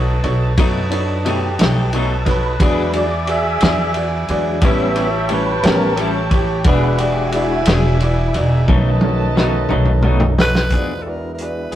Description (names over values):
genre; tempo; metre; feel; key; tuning
slow blues; 59 BPM (dotted quarters); 12/8; straight; unclear; A4 = 441 Hz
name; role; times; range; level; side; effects
bright upright piano; accompaniment; 0.0-11.7 s; D#4 to D#5; -24 LUFS; right 1 dB; none
mellow horn section; sustained chords; 0.0-10.7 s; B4 to A5; -25 LUFS; right 1 dB; none
upright bass; bass; 0.0-11.8 s; E1 to F#2; -19 LUFS; equal; none
vintage drum kit; drums; 0.2-11.8 s; hi-hat, kick drum, ride cymbal, snare drum, toms; -19 LUFS; equal; none
clean electric guitar; accompaniment; 0.6-11.8 s; A2 to G#4; -25 LUFS; left 3 dB; tremolo
tonewheel organ; sustained chords; 0.9-11.8 s; D#3 to E5; -21 LUFS; equal; slow rotary speaker
growling tenor saxophone; melody; 10.4-11.8 s; A4 to B4; -22 LUFS; equal; none
room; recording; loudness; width
moderate stone room reverb, RT60 1.4 s; rough rehearsal-room recording, tube saturation; -14 LUFS; side -12 dB against mid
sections
0.0-10.7 A section; 10.7-11.8 B section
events
tonewheel organ solo 0.0-10.7; drum fill 8.7-10.7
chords
0.0 B7; 2.6 E7; 4.6 A7; 6.7 E7; 8.7 B7; 10.7 E7